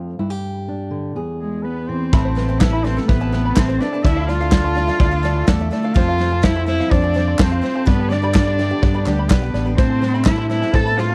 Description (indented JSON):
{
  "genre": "indie folk with a building arrangement",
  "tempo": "125 BPM",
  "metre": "4/4",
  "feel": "straight",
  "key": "A minor",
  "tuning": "A4 = 439 Hz",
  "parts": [
    { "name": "fingerpicked steel-string acoustic guitar", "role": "accompaniment", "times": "0.0-2.1 s", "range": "E2 to G#4", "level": "-27 LUFS", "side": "equal", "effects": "none" },
    { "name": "dark cello", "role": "melody", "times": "1.4-11.1 s", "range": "G3 to A4", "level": "-24 LUFS", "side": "equal", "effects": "none" },
    { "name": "clear trumpet", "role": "second line", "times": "1.4-11.1 s", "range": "G4 to A5", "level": "-32 LUFS", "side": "equal", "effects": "none" },
    { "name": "picked steel-string acoustic guitar", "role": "accompaniment", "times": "2.1-11.1 s", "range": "A2 to B4", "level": "-33 LUFS", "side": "equal", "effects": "none" },
    { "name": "warm upright piano", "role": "accompaniment", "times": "2.1-11.1 s", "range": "F1 to F5", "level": "-34 LUFS", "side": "equal", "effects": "none" },
    { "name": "warm brass ensemble", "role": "sustained chords", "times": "2.1-11.1 s", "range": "C3 to A4", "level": "-35 LUFS", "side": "equal", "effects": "none" },
    { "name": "open-back banjo", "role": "arpeggios", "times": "2.1-11.1 s", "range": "A4 to C6", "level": "-31 LUFS", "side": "equal", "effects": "none" },
    { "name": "fingered electric bass", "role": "bass", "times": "2.1-11.1 s", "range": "A1 to A2", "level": "-23 LUFS", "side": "equal", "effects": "none" },
    { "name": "loose indie drum kit", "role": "drums", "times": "2.1-11.0 s", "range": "kick drum, snare drum", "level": "-20 LUFS", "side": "equal", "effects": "none" },
    { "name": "group handclap", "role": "percussion", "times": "2.6-10.4 s", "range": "none", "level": "-32 LUFS", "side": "equal", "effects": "none" }
  ],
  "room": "little or no reverb",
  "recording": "dry, close 1970s-style studio recording",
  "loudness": "-18 LUFS",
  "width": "mono",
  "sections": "0.0-2.1 A section; 2.1-11.1 B section",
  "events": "none",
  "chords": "0.2 G5; 1.2 E; 2.1 Amadd9; 4.0 Dmadd9; 6.0 F; 7.9 G; 9.8 Amadd9"
}